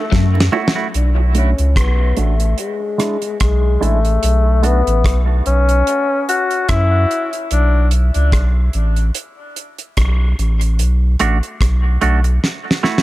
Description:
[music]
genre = dub reggae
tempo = 73 BPM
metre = 4/4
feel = swing 56% on 16ths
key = B dorian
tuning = A4 = 440 Hz
[part]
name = bright tenor saxophone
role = melody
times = 0.0-7.9 s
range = G#3 to F#4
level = -19 LUFS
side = left 3 dB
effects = low-pass filter, dub echo
[part]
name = soft dub sub bass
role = bass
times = 0.1-12.4 s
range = A1 to F#2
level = -14 LUFS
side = equal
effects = none
[part]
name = damped 70s drum kit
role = drums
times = 0.1-13.0 s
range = hi-hat, kick drum, rim click, snare drum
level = -19 LUFS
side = equal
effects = none
[part]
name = bongos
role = percussion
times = 0.3-0.7 s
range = none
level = -31 LUFS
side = right 5 dB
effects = none
[part]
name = semi-hollow electric guitar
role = accompaniment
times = 0.5-4.8, 11.2-13.0 s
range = G#3 to F#4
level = -22 LUFS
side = right 5 dB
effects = high-pass filter, low-pass filter, dub echo
[sound]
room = light reverb, small room ambience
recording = echo-heavy mix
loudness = -13 LUFS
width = side -17 dB against mid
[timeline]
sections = 0.9-13.0 A section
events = drum fill 0.0-0.9, 12.4-13.0; filter sweep 0.9-13.0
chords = 0.0 F#m7; 0.9 Bm7; 2.6 E7; 4.2 B7(no3); 5.9 C#madd11; 7.5 Asus2; 10.8 Bm7; 12.4 F#m7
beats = 0.12 | 0.94 1.76 2.58 3.40 | 4.22 5.04 5.87 6.68 | 7.51 8.33 9.15 9.97 | 10.79 11.61 12.43

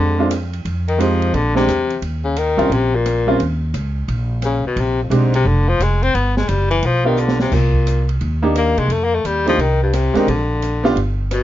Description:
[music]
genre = jazz, small-group swing and bop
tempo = 175 BPM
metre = 4/4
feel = swing 65% on 8ths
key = Bb mixolydian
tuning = A4 = 441 Hz
[part]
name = warm baritone saxophone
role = melody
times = 0.0-11.4 s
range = F2 to C4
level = -19 LUFS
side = left 4 dB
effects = none
[part]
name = bright upright piano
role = accompaniment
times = 0.0-11.0 s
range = G3 to G4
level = -18 LUFS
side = right 3 dB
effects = none
[part]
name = upright bass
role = bass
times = 0.0-11.4 s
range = F1 to C3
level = -18 LUFS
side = equal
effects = none
[part]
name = open jazz drum kit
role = drums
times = 0.3-11.4 s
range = crash cymbal, hi-hat, kick drum, ride cymbal, rim click, snare drum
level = -28 LUFS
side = right 1 dB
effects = none
[sound]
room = light reverb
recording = dark, warm production, nothing above 7.5 kHz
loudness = -15 LUFS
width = side -13 dB against mid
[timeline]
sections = 0.0-11.4 A section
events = drum fill 7.2-7.5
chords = 0.0 Bb13 (rootless); 0.6 Fm7; 1.3 Bb13; 2.0 Eb7(no3); 4.8 Bb13; 6.1 G7; 7.5 Cm7; 8.9 F7sus2; 10.3 Bb6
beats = 0.30 | 0.65 0.99 1.33 1.68 | 2.02 2.36 2.70 3.05 | 3.39 3.73 4.08 4.42 | 4.76 5.11 5.45 5.79 | 6.14 6.48 6.82 7.17 | 7.51 7.86 8.20 8.55 | 8.89 9.23 9.58 9.93 | 10.27 10.62 10.96 11.31

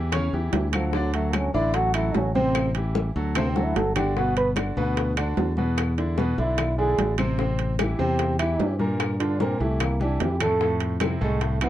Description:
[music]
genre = Afro-Cuban jazz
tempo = 149 BPM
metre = 4/4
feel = straight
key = D major, G major from 4.2 s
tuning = A4 = 440 Hz
[part]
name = clear grand piano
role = accompaniment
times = 0.0-11.7 s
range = A2 to D5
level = -28 LUFS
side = equal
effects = none
[part]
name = modern bright fingered electric bass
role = bass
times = 0.0-11.7 s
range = G1 to G2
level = -26 LUFS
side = equal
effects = none
[part]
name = bongos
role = percussion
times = 0.1-11.6 s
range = none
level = -33 LUFS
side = left 9 dB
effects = none
[part]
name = claves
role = percussion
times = 0.1-11.7 s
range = none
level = -36 LUFS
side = left 3 dB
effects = none
[part]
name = congas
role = percussion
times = 0.1-11.7 s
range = none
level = -32 LUFS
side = left 2 dB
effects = none
[part]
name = timbales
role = percussion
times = 0.1-11.7 s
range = none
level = -31 LUFS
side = right 7 dB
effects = none
[part]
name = trombone with cup mute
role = second line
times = 0.7-11.7 s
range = F3 to B4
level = -26 LUFS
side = right 2 dB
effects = none
[sound]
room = light reverb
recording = dark, warm production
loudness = -21 LUFS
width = side -12 dB against mid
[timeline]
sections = 0.0-4.2 A section; 4.2-11.7 A section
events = trombone solo 0.0-11.7; drum fill 3.6-4.2, 10.0-10.6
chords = 0.0 A7; 0.9 D; 2.5 Am7; 3.4 D7; 4.2 Gmaj7; 5.8 E7; 7.4 Am7; 9.0 Gm7; 9.8 C; 10.6 Fmaj7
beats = 0.13 0.53 | 0.94 1.34 1.74 2.15 | 2.55 2.95 3.36 3.76 | 4.16 4.57 4.97 5.37 | 5.78 6.18 6.58 6.99 | 7.39 7.79 8.20 8.60 | 9.00 9.41 9.81 10.21 | 10.61 11.02 11.42

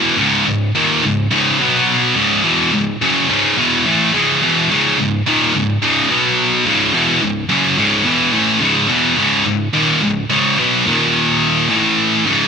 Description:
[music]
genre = metal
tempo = 107 BPM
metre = 4/4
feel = straight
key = C# minor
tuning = A4 = 438 Hz
[part]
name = scooped high-gain guitar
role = solo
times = 0.0-12.5 s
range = C#2 to B3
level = -12 LUFS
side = equal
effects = distortion, tape echo
[sound]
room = moderate small room reverb, RT60 0.6 s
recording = rough home demo mix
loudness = -12 LUFS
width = side -6 dB against mid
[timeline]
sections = 0.0-12.2 A section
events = none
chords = 0.0 C#m; 1.6 B5; 2.2 C#m; 6.1 B5; 6.6 C#m; 10.8 D#5; 11.7 A5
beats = 0.48 | 1.04 1.60 2.16 2.73 | 3.29 3.85 4.41 4.97 | 5.53 6.09 6.65 7.21 | 7.77 8.33 8.89 9.45 | 10.01 10.57 11.13 11.69 | 12.25

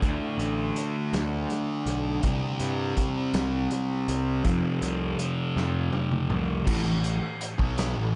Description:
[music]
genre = psychedelic rock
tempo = 54 BPM (dotted quarters)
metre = 6/8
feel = straight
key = unclear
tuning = A4 = 441 Hz
[part]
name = thick fuzz guitar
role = riff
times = 0.0-8.2 s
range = F2 to D4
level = -30 LUFS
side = equal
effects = distortion, phaser, tape echo
[part]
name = fuzz picked electric bass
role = bass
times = 0.0-8.2 s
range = A1 to G2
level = -33 LUFS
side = equal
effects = overdrive
[part]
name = vintage drum kit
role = drums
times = 0.0-8.0 s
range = crash cymbal, hi-hat, kick drum, snare drum, toms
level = -33 LUFS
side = equal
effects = none
[sound]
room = light reverb, studio ambience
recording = echo-heavy mix, nothing above 10.5 kHz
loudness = -27 LUFS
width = mono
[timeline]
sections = 0.0-6.7 A section; 6.7-8.2 B section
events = drum fill 5.6-6.7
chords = 0.0 D5; 2.2 C5; 4.5 F5; 6.7 A5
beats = | 0.02 1.13 | 2.24 3.35 | 4.45 5.56 | 6.67 7.78

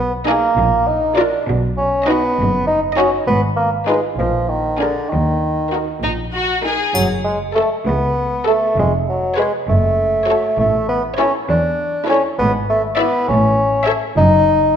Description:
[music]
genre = cinematic, playful, whimsical film cue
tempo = 66 BPM (dotted quarters)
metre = 6/8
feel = straight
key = Eb minor, F# minor from 7.0 s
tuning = A4 = 437 Hz
[part]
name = warm bassoon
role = accompaniment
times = 0.0-14.8 s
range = D3 to D#4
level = -16 LUFS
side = equal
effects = none
[part]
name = rich chamber cello section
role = bass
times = 0.0-14.8 s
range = C#2 to Cb3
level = -23 LUFS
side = right 1 dB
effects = none
[part]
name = warm chamber double bass section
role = bass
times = 0.0-14.7 s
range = E#1 to Eb2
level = -23 LUFS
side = right 2 dB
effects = none
[part]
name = rich studio violin section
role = melody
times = 0.3-14.1 s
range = A4 to E5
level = -25 LUFS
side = left 5 dB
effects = none
[part]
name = warm symphonic violin section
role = second line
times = 0.3-14.1 s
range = Eb4 to D5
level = -24 LUFS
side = left 2 dB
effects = none
[part]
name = warm symphonic viola section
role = accompaniment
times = 0.3-14.1 s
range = D4 to A4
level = -24 LUFS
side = right 2 dB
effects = none
[part]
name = triangle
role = percussion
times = 7.0-8.1 s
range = none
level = -29 LUFS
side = left 2 dB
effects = none
[sound]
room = wet scoring stage reverb, RT60 1.9 s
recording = none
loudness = -14 LUFS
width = side -8 dB against mid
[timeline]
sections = 0.0-7.0 A section; 7.0-14.8 B section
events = none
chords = 0.0 Abm/Cb; 0.6 Bb; 1.5 B; 3.3 Fm7b5/Ab; 4.2 Bb7; 5.1 Ebm; 7.0 F#m; 8.8 C#7/E#; 9.7 F#m; 10.6 A; 12.4 E7/G#; 13.3 A; 14.2 N.C.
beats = 0.58 | 1.48 2.38 | 3.28 4.19 | 5.11 6.03 | 6.95 7.87 | 8.78 9.68 | 10.59 11.49 | 12.39 13.29 | 14.18

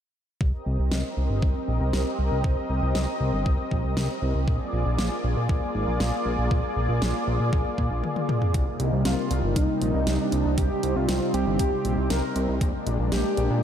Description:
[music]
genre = synthwave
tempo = 118 BPM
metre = 4/4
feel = straight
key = C minor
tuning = A4 = 443 Hz
[part]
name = analog string pad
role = sustained chords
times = 0.4-13.6 s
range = C3 to Eb5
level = -28 LUFS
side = equal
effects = ensemble chorus, sidechain pumping
[part]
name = fat analog bass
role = bass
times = 0.4-13.6 s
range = G1 to Bb2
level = -25 LUFS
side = equal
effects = sidechain pumping
[part]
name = electronic kick drum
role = drums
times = 0.4-12.7 s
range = none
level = -25 LUFS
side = equal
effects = overdrive
[part]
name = pop drum kit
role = drums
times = 0.9-13.5 s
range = hi-hat, snare drum, toms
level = -32 LUFS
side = equal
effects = none
[part]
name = wide unison lead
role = melody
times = 9.1-13.6 s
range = Eb4 to Bb4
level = -28 LUFS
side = right 1 dB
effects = ping-pong delay
[sound]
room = moderate cathedral reverb, RT60 5.8 s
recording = dreamy mix soaked in reverb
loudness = -22 LUFS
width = side -9 dB against mid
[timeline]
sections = 0.4-8.5 A section; 8.5-13.6 B section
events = filter sweep on analog synth bass 0.4-8.5; drum fill 8.0-8.5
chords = 0.4 Cm7; 4.5 Bb7; 8.5 Cm7; 12.6 Bb7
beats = | 0.41 0.92 1.43 1.93 | 2.44 2.95 3.46 3.97 | 4.48 4.99 5.49 6.00 | 6.51 7.02 7.53 8.04 | 8.54 9.05 9.56 10.07 | 10.58 11.09 11.60 12.10 | 12.61 13.12 13.63

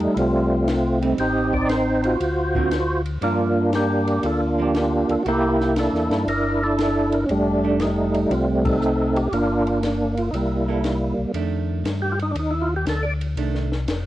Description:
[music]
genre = soul jazz organ trio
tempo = 118 BPM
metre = 4/4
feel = swing 68% on 8ths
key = unclear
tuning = A4 = 438 Hz
[part]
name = percussive tonewheel organ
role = melody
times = 0.0-13.1 s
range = G3 to D5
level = -20 LUFS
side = right 1 dB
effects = slow rotary speaker, overdrive, chorus vibrato, cassette tape
[part]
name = mellow tonewheel organ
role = bass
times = 0.0-14.1 s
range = F1 to G2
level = -26 LUFS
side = left 1 dB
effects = slow rotary speaker
[part]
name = compact cocktail drum kit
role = drums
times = 0.0-14.0 s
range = hi-hat, kick drum, ride cymbal, snare drum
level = -31 LUFS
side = left 1 dB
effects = none
[part]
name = vintage hollow-body jazz guitar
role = accompaniment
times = 1.0-13.7 s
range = D3 to A4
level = -29 LUFS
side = right 7 dB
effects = cassette tape
[sound]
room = light reverb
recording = home recording on cassette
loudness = -19 LUFS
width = side -14 dB against mid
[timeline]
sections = 0.0-11.4 A section; 11.4-14.1 B section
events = band accent 8.6; tonewheel organ solo 11.4-14.1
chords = 0.0 F9; 1.2 Adim; 2.2 D7alt; 3.2 Gm7; 5.3 C13; 7.3 F13; 9.3 Gm7; 10.3 C6; 11.4 F13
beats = 0.16 0.67 | 1.18 1.69 2.20 2.71 | 3.22 3.73 4.24 4.75 | 5.26 5.77 6.28 6.78 | 7.29 7.80 8.31 8.81 | 9.32 9.83 10.34 10.85 | 11.35 11.86 12.37 12.87 | 13.38 13.89

